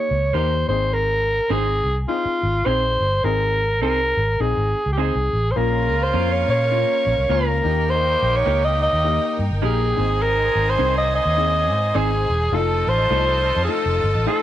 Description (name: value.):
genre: soul.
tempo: 103 BPM.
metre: 4/4.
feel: swing 60% on 8ths.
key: Ab major.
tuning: A4 = 440 Hz.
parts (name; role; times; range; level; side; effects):
growling alto saxophone; melody; 0.0-14.4 s; F4 to Eb5; -20 LUFS; equal; none.
dark upright piano; accompaniment; 0.0-14.4 s; A3 to Bb4; -28 LUFS; left 12 dB; none.
vintage muted fingered electric bass; bass; 0.1-14.3 s; Fb1 to Bb2; -22 LUFS; equal; none.
electric guitar through a small old amp; stabs; 0.3-14.4 s; A3 to C5; -30 LUFS; right 12 dB; wide subtle chorus, tape echo.
warm horn section; second line; 5.5-14.4 s; Db3 to A4; -30 LUFS; right 10 dB; none.
rich studio string section; second line; 5.6-14.4 s; Db4 to A5; -30 LUFS; equal; none.
room: light reverb, small room ambience.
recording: 1960s-style stereo with parts hard left and right.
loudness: -17 LUFS.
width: side -12 dB against mid.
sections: 0.0-5.6 A section; 5.6-14.4 B section.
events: none.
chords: 0.0 Eb; 0.6 Ab; 5.6 Bbm; 7.6 Eb; 9.9 Ab; 12.5 F7.